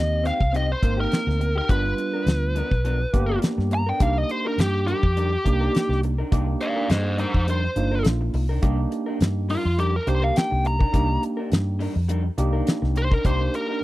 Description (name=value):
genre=straight-eighth soul blues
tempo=104 BPM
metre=4/4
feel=swing 54% on 16ths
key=C minor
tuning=A4 = 436 Hz
part: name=biting lead guitar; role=melody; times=0.0-13.8 s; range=Eb4 to A#5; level=-26 LUFS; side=equal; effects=overdrive
part: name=overdriven tine electric piano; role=accompaniment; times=0.0-13.8 s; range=G3 to Bb4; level=-28 LUFS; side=right 2 dB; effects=lush chorus
part: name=vintage muted fingered electric bass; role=bass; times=0.0-13.5 s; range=G1 to G2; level=-23 LUFS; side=equal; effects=none
part: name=electric guitar through a small old amp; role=stabs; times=0.2-13.8 s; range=F3 to A#4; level=-33 LUFS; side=left 2 dB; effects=slapback echo
part: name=damped 70s drum kit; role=drums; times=0.3-13.7 s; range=hi-hat, kick drum, snare drum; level=-21 LUFS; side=equal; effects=none
room=small room reverb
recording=dry, close 1970s-style studio recording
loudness=-20 LUFS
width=side -17 dB against mid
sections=0.0-8.6 A section; 8.6-13.8 B section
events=lead electric guitar solo 8.6-13.8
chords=0.0 Abmaj7; 1.7 G7#9; 4.0 Cm9